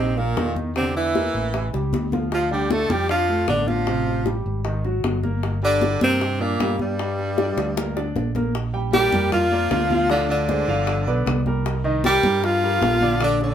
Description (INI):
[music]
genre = Afro-Cuban jazz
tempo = 154 BPM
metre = 4/4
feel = straight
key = G minor, Bb major from 8.5 s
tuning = A4 = 440 Hz
[part]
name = breathy tenor saxophone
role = melody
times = 0.0-13.5 s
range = G3 to A4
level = -22 LUFS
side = left 1 dB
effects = none
[part]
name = breathy baritone saxophone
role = second line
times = 0.0-13.5 s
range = G2 to A3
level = -26 LUFS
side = right 3 dB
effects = none
[part]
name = warm concert grand piano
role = accompaniment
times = 0.0-13.5 s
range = C3 to G5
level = -28 LUFS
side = right 1 dB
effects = none
[part]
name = fingered electric bass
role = bass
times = 0.0-13.5 s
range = G1 to G2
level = -25 LUFS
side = right 1 dB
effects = none
[part]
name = bongos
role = percussion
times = 0.2-13.5 s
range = none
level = -29 LUFS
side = left 4 dB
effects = none
[part]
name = congas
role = percussion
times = 0.2-13.5 s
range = none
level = -27 LUFS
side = left 2 dB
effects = none
[sound]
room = light reverb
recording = band playing live in one room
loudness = -19 LUFS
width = side -9 dB against mid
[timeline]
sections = 0.0-8.5 A section; 8.5-13.5 B section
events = drum fill 1.7-2.3, 7.6-8.5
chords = 0.0 Eb5; 0.8 Bbmaj9#11; 1.5 A7; 2.3 Dm; 3.9 Fadd9; 4.7 Absus2; 5.4 Gm; 8.5 Bb6; 10.1 Dm7b5; 10.9 G7; 11.7 Cm7